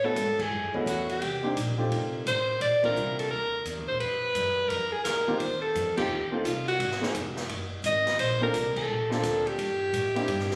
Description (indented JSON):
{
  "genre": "jazz, small-group swing and bop",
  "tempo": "172 BPM",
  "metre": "4/4",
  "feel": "swing 65% on 8ths",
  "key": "unclear",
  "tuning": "A4 = 440 Hz",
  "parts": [
    { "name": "breathy alto saxophone", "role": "melody", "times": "0.0-10.6 s", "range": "F4 to Eb5", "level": "-30 LUFS", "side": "equal", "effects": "none" },
    { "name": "warm upright piano", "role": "accompaniment", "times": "0.0-10.3 s", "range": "A3 to A4", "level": "-34 LUFS", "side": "equal", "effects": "none" },
    { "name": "upright bass", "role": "bass", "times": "0.0-10.6 s", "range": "F1 to A2", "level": "-38 LUFS", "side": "equal", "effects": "none" },
    { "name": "open jazz drum kit", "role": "drums", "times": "0.2-10.6 s", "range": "crash cymbal, hi-hat, kick drum, ride cymbal, snare drum", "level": "-38 LUFS", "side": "equal", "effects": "none" }
  ],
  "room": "moderate large studio reverb, RT60 1.2 s",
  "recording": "recorded on a phone in the room, studio reverb, compression",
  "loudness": "-28 LUFS",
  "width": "mono",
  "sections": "0.0-10.6 A section",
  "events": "band accent 0.3, 2.8, 5.9, 8.7",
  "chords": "0.0 A6; 1.2 Cm9; 1.9 F9; 2.6 Bbadd9; 4.0 Bb; 5.4 Eb69; 6.8 Ab7(no3); 8.2 Bbmaj7; 9.6 Gmadd9"
}